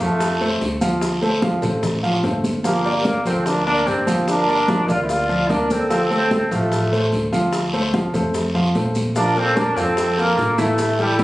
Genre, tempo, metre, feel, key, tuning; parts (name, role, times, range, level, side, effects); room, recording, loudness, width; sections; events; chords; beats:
Afro-Cuban jazz; 148 BPM; 4/4; straight; D minor; A4 = 440 Hz
brilliant trombone; melody; 0.0-11.2 s; G3 to F4; -20 LUFS; equal
breathy mellow concert flute; second line; 0.0-11.2 s; E4 to D5; -25 LUFS; equal
warm concert grand piano; accompaniment; 0.0-11.2 s; E3 to F5; -21 LUFS; equal
upright bass; bass; 0.0-11.2 s; G1 to F2; -26 LUFS; equal
bongos; percussion; 0.0-11.2 s; -31 LUFS; left 3 dB
guiro; percussion; 0.0-11.2 s; -31 LUFS; right 1 dB
maracas; percussion; 0.0-11.2 s; -38 LUFS; left 2 dB
congas; percussion; 0.2-11.2 s; -25 LUFS; equal
moderate club reverb, RT60 0.6 s; recorded on a phone in the room, studio reverb; -17 LUFS; side -17 dB against mid
0.0-11.2 A section
0.0 Dm7; 2.6 Gm7; 5.9 Dm7; 9.2 Bb5
0.20 0.61 | 1.02 1.43 1.83 2.24 | 2.65 3.05 3.46 3.87 | 4.27 4.68 5.09 5.49 | 5.90 6.31 6.71 7.12 | 7.53 7.93 8.34 8.75 | 9.15 9.56 9.97 10.38 | 10.78 11.19